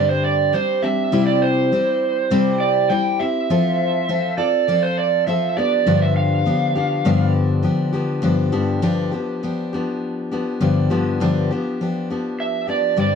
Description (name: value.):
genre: pop.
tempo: 101 BPM.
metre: 4/4.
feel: straight.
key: unclear.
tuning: A4 = 440 Hz.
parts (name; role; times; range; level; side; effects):
overdriven slide guitar; melody; 0.0-7.3, 12.4-13.2 s; C5 to G5; -20 LUFS; right 7 dB; none.
picked steel-string acoustic guitar; accompaniment; 0.0-13.2 s; G2 to A4; -19 LUFS; left 3 dB; none.
room: moderate studio reverb, RT60 0.5 s.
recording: dark, warm production.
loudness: -17 LUFS.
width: side -6 dB against mid.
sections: 0.0-8.2 A section; 8.2-13.0 B section.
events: none.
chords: 0.0 Gsus4; 1.1 C; 3.5 F; 5.6 G7.